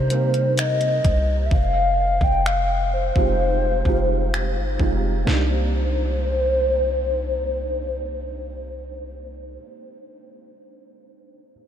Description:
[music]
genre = contemporary R&B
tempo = 64 BPM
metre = 4/4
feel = straight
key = C minor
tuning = A4 = 440 Hz
[part]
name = hollow clarinet-like synth lead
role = melody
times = 0.0-9.6 s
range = C5 to G5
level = -23 LUFS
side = left 1 dB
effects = chorus, low-pass filter, ping-pong delay
[part]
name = felt-muted upright piano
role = accompaniment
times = 0.0-11.5 s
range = G3 to Bb4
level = -30 LUFS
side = right 5 dB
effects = ensemble chorus, low-pass filter
[part]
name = warm 808-style bass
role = bass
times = 0.0-9.6 s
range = F1 to C3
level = -24 LUFS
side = equal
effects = none
[part]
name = detuned 8-bit digital drum machine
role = drums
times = 0.1-5.5 s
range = finger snaps, hi-hat, kick drum, snare drum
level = -26 LUFS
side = equal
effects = none
[sound]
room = moderate huge ambient reverb, RT60 8.0 s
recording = dreamy mix soaked in reverb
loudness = -19 LUFS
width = side -9 dB against mid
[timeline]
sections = 0.0-5.3 A section; 5.3-9.0 B section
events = none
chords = 0.0 Cm7; 1.5 Fm7; 5.3 Cm7

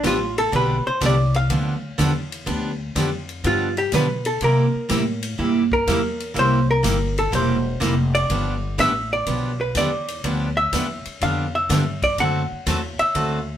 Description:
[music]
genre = country, western swing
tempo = 124 BPM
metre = 4/4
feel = swing 68% on 8ths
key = G mixolydian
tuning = A4 = 440 Hz
[part]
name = archtop guitar, miked and amplified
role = second line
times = 0.0-13.6 s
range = F4 to F#5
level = -22 LUFS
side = equal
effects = none
[part]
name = picked steel-string acoustic guitar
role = accompaniment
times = 0.0-13.4 s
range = C3 to A4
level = -22 LUFS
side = right 2 dB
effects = none
[part]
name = upright bass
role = bass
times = 0.0-13.6 s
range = E1 to C3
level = -25 LUFS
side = left 1 dB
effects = none
[part]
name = swinging big-band drum kit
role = drums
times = 0.0-13.3 s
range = hi-hat, kick drum, ride cymbal, snare drum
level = -30 LUFS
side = left 2 dB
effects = none
[sound]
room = wet studio ambience, RT60 0.5 s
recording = band playing live in one room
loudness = -19 LUFS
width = side -10 dB against mid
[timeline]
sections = 0.0-13.6 A section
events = hollow-body jazz guitar solo 0.0-13.6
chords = 0.0 G7; 4.4 C7; 8.3 G7; 12.2 D7

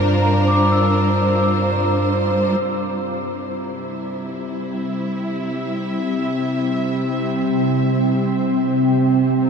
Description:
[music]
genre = ambient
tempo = free time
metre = none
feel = none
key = C mixolydian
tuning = A4 = 440 Hz
[part]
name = warm studio string section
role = sustained chords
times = 0.0-9.5 s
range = C3 to E5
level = -21 LUFS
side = right 1 dB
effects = none
[part]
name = large celesta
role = arpeggios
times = 0.0-2.6 s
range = F5 to E6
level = -24 LUFS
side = right 1 dB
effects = ping-pong delay
[part]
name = deep rumbling drone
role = bass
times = 0.0-2.6 s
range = G2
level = -22 LUFS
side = equal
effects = built-in reverb
[part]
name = organ-like drone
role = drone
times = 2.6-9.5 s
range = C3 to C4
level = -22 LUFS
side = equal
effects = ensemble chorus, built-in reverb
[sound]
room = wet huge ambient reverb, RT60 9.2 s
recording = dark, warm production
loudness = -17 LUFS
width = side -6 dB against mid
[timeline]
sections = 0.0-2.6 A section; 2.6-9.5 B section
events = fade-in on string section 2.6-9.5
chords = 0.0 Gm7; 2.6 C; 8.9 Csus4

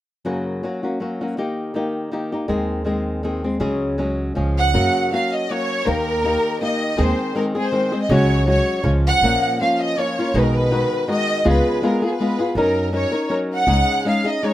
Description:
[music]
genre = mexican folk, mariachi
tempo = 161 BPM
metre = 3/4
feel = swing 54% on 8ths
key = F# major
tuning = A4 = 440 Hz
[part]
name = flamenco guitar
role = accompaniment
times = 0.2-14.5 s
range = F#2 to A#4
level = -21 LUFS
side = left 2 dB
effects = none
[part]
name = upright bass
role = bass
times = 2.5-13.8 s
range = A#1 to F#2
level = -21 LUFS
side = right 1 dB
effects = none
[part]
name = rich studio violin section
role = melody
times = 4.6-14.5 s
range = G#4 to F#5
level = -20 LUFS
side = right 1 dB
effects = none
[sound]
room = light reverb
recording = rough home demo mix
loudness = -18 LUFS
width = side -14 dB against mid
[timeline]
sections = 0.3-4.7 A section; 4.7-14.5 B section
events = none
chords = 0.3 F#; 1.4 D#; 2.5 G#/D#; 3.6 C#sus4; 4.4 C#; 4.7 F#; 5.9 D#; 7.0 G#/D#; 8.1 C#sus4; 8.8 C#; 9.2 A#m; 10.3 B6; 11.5 C#7; 12.6 F#6; 13.7 C#sus2

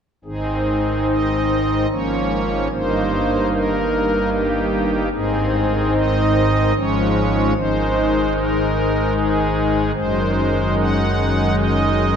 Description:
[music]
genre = classical, chorale-style piece for pipe organ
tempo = 75 BPM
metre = 3/4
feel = rubato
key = Ab major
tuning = A4 = 440 Hz
[part]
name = pipe organ, strings celeste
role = solo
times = 0.2-12.2 s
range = Gb1 to Gb5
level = -16 LUFS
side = equal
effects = none
[sound]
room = wet cathedral reverb, RT60 4.7 s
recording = in a vast, echoing space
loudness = -16 LUFS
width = side -7 dB against mid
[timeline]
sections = 0.2-12.2 A section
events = none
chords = 0.2 Ab; 1.9 Bbm7/Ab; 2.7 Eb/G; 5.1 Ab; 6.8 Db/Ab; 7.6 Ab; 9.9 Ab7/Gb

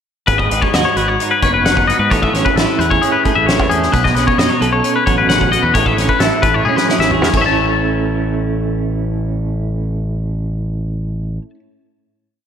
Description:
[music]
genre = math rock and midwest emo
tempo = 132 BPM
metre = 4/4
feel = straight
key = A lydian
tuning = A4 = 436 Hz
[part]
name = twelve-string electric guitar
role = accompaniment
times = 0.3-11.6 s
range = G#2 to A4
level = -19 LUFS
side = right 5 dB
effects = tremolo
[part]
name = twangy electric guitar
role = arpeggios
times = 0.3-11.5 s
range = G#4 to A5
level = -15 LUFS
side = left 5 dB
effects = spring reverb, slapback echo
[part]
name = growling fingered electric bass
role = bass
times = 0.3-11.4 s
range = F#1 to G#2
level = -20 LUFS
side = equal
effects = overdrive
[part]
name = loose indie drum kit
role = drums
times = 0.3-7.4 s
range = crash cymbal, hi-hat, kick drum, snare drum, toms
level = -18 LUFS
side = equal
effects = none
[sound]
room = moderate lush hall reverb, RT60 1.7 s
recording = big arena sound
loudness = -13 LUFS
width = side -8 dB against mid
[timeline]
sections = 0.3-7.6 A section; 7.6-11.2 final hit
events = drum fill 6.7-7.6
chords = 0.3 G#m7; 2.1 Amaj9; 3.9 B9; 5.7 Aadd9; 6.4 Amaj9; 7.3 A

